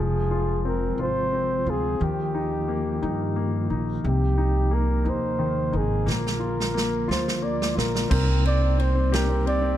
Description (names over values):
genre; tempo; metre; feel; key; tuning
six-eight pop ballad; 59 BPM (dotted quarters); 6/8; straight; unclear; A4 = 440 Hz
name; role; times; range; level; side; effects
breathy flugelhorn; melody; 0.0-9.8 s; G4 to D5; -28 LUFS; right 2 dB; ping-pong delay
clear grand piano; accompaniment; 0.0-9.8 s; C3 to G4; -28 LUFS; left 6 dB; none
mellow tonewheel organ; sustained chords; 0.0-9.8 s; C3 to F4; -32 LUFS; right 3 dB; chorus vibrato, fast rotary speaker
upright bass; bass; 0.0-9.8 s; F1 to G2; -25 LUFS; equal; none
natural country drum kit; drums; 6.1-9.6 s; crash cymbal, kick drum, ride cymbal, snare drum; -28 LUFS; right 2 dB; none
room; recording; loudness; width
studio reverb; dark, warm production; -22 LUFS; side -12 dB against mid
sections
0.0-8.1 A section; 8.1-9.8 B section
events
drum fill 6.1-8.1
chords
0.0 Fm; 2.0 Ebadd9; 4.0 Cm7; 6.1 Bb; 8.1 Cm7